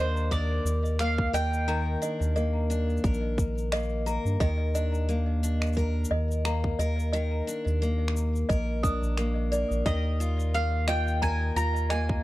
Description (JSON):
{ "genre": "folktronica", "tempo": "88 BPM", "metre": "4/4", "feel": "swing 56% on 16ths", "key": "unclear", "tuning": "A4 = 439 Hz", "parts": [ { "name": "mandolin", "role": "melody", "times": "0.0-2.0, 9.9-12.2 s", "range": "C5 to Bb5", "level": "-31 LUFS", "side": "right 1 dB", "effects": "none" }, { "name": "toy piano", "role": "second line", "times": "0.0-12.1 s", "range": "D5 to Eb6", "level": "-35 LUFS", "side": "equal", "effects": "tape echo" }, { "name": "picked steel-string acoustic guitar", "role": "arpeggios", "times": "0.0-12.2 s", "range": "Eb3 to Bb4", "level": "-32 LUFS", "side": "left 2 dB", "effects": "tape echo" }, { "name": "round analog bass", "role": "bass", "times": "0.0-12.2 s", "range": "Bb1 to G2", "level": "-27 LUFS", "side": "equal", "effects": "none" }, { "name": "electronic cabasa and finger snaps", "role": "drums", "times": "0.2-12.1 s", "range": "none", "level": "-38 LUFS", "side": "left 1 dB", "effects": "none" }, { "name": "electronic kick drum", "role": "drums", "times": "0.3-12.2 s", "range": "none", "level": "-27 LUFS", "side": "equal", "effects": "none" } ], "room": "small room ambience", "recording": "dry, close 1970s-style studio recording", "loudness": "-25 LUFS", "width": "side -16 dB against mid", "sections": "0.0-12.2 A section", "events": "none", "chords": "0.0 Ebmaj7(no3); 9.9 Bb7sus4/Eb" }